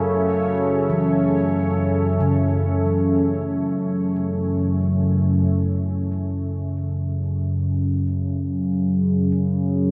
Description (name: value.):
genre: dark ambient drone.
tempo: free time.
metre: none.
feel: none.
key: unclear.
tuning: A4 = 440 Hz.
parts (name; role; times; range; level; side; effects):
deep dark ambient pad; sustained chords; 0.0-5.5 s; C#4 to E5; -28 LUFS; equal; chorus, built-in reverb.
analog drone; drone; 0.0-9.9 s; F#2 to C#3; -23 LUFS; equal; chorus, phaser.
bubbling stepped-filter texture; texture; 0.0-5.5 s; C#5; -43 LUFS; equal; chorus, built-in reverb.
gamelan-type bossed gongs; arpeggios; 0.9-9.9 s; F#2 to E3; -32 LUFS; equal; tape echo.
room: wet huge ambient reverb, RT60 8.3 s.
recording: in a vast, echoing space.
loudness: -21 LUFS.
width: mono.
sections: 0.0-5.5 A section; 5.5-9.9 B section.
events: fade-out on synth texture 0.0-5.5.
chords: 0.0 A; 5.5 F#5.